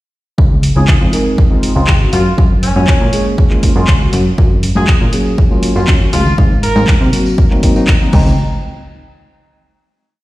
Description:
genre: filtered disco house.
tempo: 120 BPM.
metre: 4/4.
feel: straight.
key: Db major.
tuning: A4 = 441 Hz.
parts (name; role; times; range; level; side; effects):
bright tine electric piano; accompaniment; 0.4-8.3 s; F3 to Bb4; -17 LUFS; equal; phaser, vintage 12-bit sampler grit, sidechain pumping, low-pass filter.
plucky analog bass; bass; 0.4-8.4 s; Ab1 to C3; -14 LUFS; equal; sidechain pumping, low-pass filter.
electronic kick drum; drums; 0.4-8.2 s; none; -12 LUFS; equal; none.
punchy analog drum machine; drums; 0.6-8.2 s; crash cymbal, handclaps, hi-hat; -21 LUFS; equal; sidechain pumping on hats, sidechain pumping on cymbals.
clear horn section; melody; 0.8-7.0 s; Db4 to Bb4; -20 LUFS; equal; sidechain pumping, low-pass filter, tape echo.
tambourine and congas; percussion; 4.4-8.4 s; none; -22 LUFS; left 1 dB; sidechain pumping on perc, low-pass filter on perc.
room: little or no reverb.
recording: played on a big sound system in a bare room, stone room reverb.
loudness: -9 LUFS.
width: side -17 dB against mid.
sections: 0.4-8.4 groove; 8.4-10.2 final hit.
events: filter sweep 0.4-8.4.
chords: 0.4 Dbmaj9; 2.1 Gbmaj9; 6.4 Ab7; 8.1 Dbmaj9; 8.4 N.C..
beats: | 0.38 0.88 1.38 1.88 | 2.38 2.88 3.38 3.88 | 4.38 4.88 5.38 5.88 | 6.38 6.88 7.38 7.88.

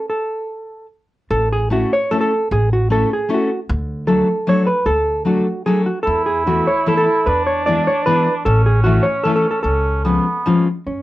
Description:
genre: musette waltz.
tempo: 151 BPM.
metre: 3/4.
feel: rubato.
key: A major.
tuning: A4 = 440 Hz.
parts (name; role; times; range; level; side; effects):
hollow-body jazz guitar; melody; 0.0-11.0 s; C#4 to D5; -18 LUFS; right 1 dB; none.
dark cor anglais; second line; 0.0-0.1, 6.1-10.6 s; B3 to E4; -21 LUFS; right 2 dB; none.
upright bass; bass; 1.3-11.0 s; A1 to F#2; -19 LUFS; equal; none.
picked steel-string acoustic guitar; accompaniment; 1.7-10.7 s; E3 to A4; -18 LUFS; left 2 dB; none.
room: moderate small room ambience, RT60 0.5 s.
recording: worn, warbling old tape, cassette tape, warbly pitch drift.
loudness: -15 LUFS.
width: side -16 dB against mid.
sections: 0.0-1.3 A section; 1.3-10.9 A section.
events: stop 0.1-1.3.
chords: 0.0 N.C.; 1.3 A6; 3.7 D; 6.1 Esus4; 7.3 E; 8.5 A; 9.6 C#7.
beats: | 0.09 0.49 0.90 | 1.30 1.71 2.11 | 2.50 2.90 3.29 | 3.68 4.07 4.47 | 4.86 5.26 5.66 | 6.07 6.47 6.87 | 7.27 7.67 8.07 | 8.46 8.85 9.25 | 9.64 10.04 10.45 | 10.86.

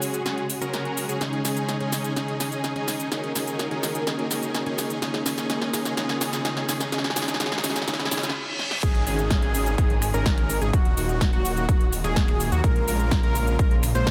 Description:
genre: EDM, festival progressive house.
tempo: 126 BPM.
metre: 4/4.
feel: straight.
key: unclear.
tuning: A4 = 440 Hz.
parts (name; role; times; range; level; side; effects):
muted studio string section; sustained chords; 0.0-14.1 s; Db3 to Bb4; -34 LUFS; equal; vintage 12-bit sampler grit, sidechain pumping.
dense compressed supersaw; riff; 0.0-14.1 s; Ab3 to C5; -32 LUFS; equal; sidechain pumping, low-pass filter, digital delay.
big-room dance drum kit; drums; 0.0-14.1 s; cabasa, crash cymbal, finger snaps, hi-hat, snare drum; -31 LUFS; equal; high-pass filter on snare, high-pass filter on hats, high-pass filter on perc, high-pass filter on cymbals.
riser, reverse cymbal and downlifter; sound effects; 5.9-12.6 s; none; -38 LUFS; equal; none.
unison lead; arpeggios; 8.8-14.1 s; Gb4 to C5; -31 LUFS; equal; sidechain pumping, digital delay.
detuned saw bass; bass; 8.8-14.1 s; Eb1 to Eb2; -28 LUFS; equal; chorus, sidechain pumping.
electronic kick drum; drums; 8.8-14.1 s; none; -24 LUFS; equal; none.
room: light reverb.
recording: none.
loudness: -24 LUFS.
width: mono.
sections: 0.0-8.8 A section; 8.8-14.1 B section.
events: build-up 0.0-8.8; drum fill 0.0-8.4, 8.6; reverse cymbal 7.9-8.8; drop 8.8-14.1.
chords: 0.0 Gbsus2; 1.2 Absus4; 3.1 Ebm; 5.0 Bbm7; 6.9 Gbsus2; 8.8 Absus4; 10.7 Ebm; 12.6 Bbm7.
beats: 0.26 0.73 | 1.21 1.69 2.16 2.64 | 3.12 3.59 4.07 4.54 | 5.02 5.50 5.97 6.45 | 6.92 7.40 7.88 8.35 | 8.83 9.31 9.78 10.26 | 10.73 11.21 11.69 12.16 | 12.64 13.12 13.59 14.07.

